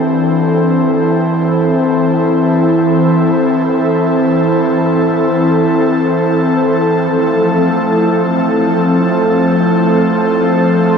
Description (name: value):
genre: ambient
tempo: free time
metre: none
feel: none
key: unclear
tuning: A4 = 440 Hz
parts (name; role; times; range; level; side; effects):
- airy breathy pad; solo; 0.0-11.0 s; E3 to C5; -10 LUFS; equal; chorus, diffuse ambient delay
room: wet huge ambient reverb, RT60 7.4 s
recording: in a vast, echoing space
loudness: -10 LUFS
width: side -6 dB against mid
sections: 0.0-11.0 A section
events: none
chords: 0.0 Cadd9; 7.0 F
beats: free time